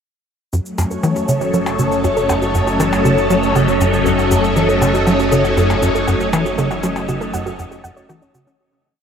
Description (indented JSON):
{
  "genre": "ambient, sequencer-driven space music",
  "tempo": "119 BPM",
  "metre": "4/4",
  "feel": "straight",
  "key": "F# dorian",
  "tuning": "A4 = 440 Hz",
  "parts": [
    { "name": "phased string machine", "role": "sustained chords", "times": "0.5-8.6 s", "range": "F#3 to C#5", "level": "-16 LUFS", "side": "left 1 dB", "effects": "ensemble chorus, phaser" },
    { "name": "soft round pluck", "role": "arpeggios", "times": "0.5-8.6 s", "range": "C#4 to F#5", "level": "-27 LUFS", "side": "right 4 dB", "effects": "chorus, auto-pan, tape echo" },
    { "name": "tight sequencer bass", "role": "riff", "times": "0.5-8.5 s", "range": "F#2 to F#3", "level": "-19 LUFS", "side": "equal", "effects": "lush chorus, tape echo" },
    { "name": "analog drone", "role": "bass", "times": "1.5-8.6 s", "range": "F#1", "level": "-25 LUFS", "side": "equal", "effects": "chorus" },
    { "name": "cabasa and percussion blips", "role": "percussion", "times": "0.5-8.6 s", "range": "none", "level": "-29 LUFS", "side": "left 2 dB", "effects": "tape echo" },
    { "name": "wind-like tuned noise texture", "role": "texture", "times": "1.2-8.6 s", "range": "D#4 to D#5", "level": "-28 LUFS", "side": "equal", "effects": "built-in reverb, lush chorus" }
  ],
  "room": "wet huge ambient reverb, RT60 7.4 s",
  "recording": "dreamy mix soaked in reverb",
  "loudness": "-14 LUFS",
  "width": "side -7 dB against mid",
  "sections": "0.5-8.6 A section",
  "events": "fade-in on synth texture 0.5-8.6; filter sweep on synth arpeggio sound 0.5-8.6; fade-out 5.9-8.6",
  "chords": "0.5 F#m",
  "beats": "| 0.53 1.03 1.54 2.04 | 2.55 3.05 3.56 4.06 | 4.56 5.07 5.57 6.08 | 6.58 7.08 7.59 8.09"
}